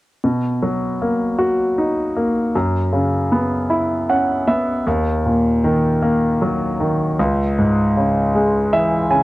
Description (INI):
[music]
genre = pop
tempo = 52 BPM (dotted quarters)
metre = 6/8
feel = straight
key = B major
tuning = A4 = 441 Hz
[part]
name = bright concert grand piano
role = accompaniment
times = 0.2-9.2 s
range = C#2 to G#5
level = -16 LUFS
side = equal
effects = cassette tape
[sound]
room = moderate booth ambience, RT60 0.2 s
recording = home recording on cassette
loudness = -16 LUFS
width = side -18 dB against mid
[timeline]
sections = 0.2-9.2 A section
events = grand piano fill 3.7-4.9, 8.3-9.2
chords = 0.2 Bmaj7; 2.5 F#7sus4; 4.9 D#m; 7.2 C#m